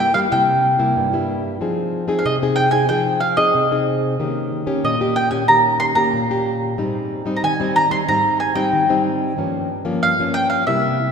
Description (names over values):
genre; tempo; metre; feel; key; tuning
samba; 93 BPM; 4/4; straight; F minor; A4 = 440 Hz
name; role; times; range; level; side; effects
mandolin; melody; 0.0-11.1 s; Eb5 to C6; -18 LUFS; right 1 dB; none
nylon-string guitar; accompaniment; 0.0-11.1 s; G2 to Ab4; -20 LUFS; left 1 dB; none
room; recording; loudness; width
wet church reverb, RT60 3.0 s; recorded in a church or concert hall; -16 LUFS; side -6 dB against mid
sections
0.0-11.1 A section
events
none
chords
0.0 C7; 1.6 Fm7; 4.2 Eb7; 6.8 Abmaj7; 9.4 Gm7b5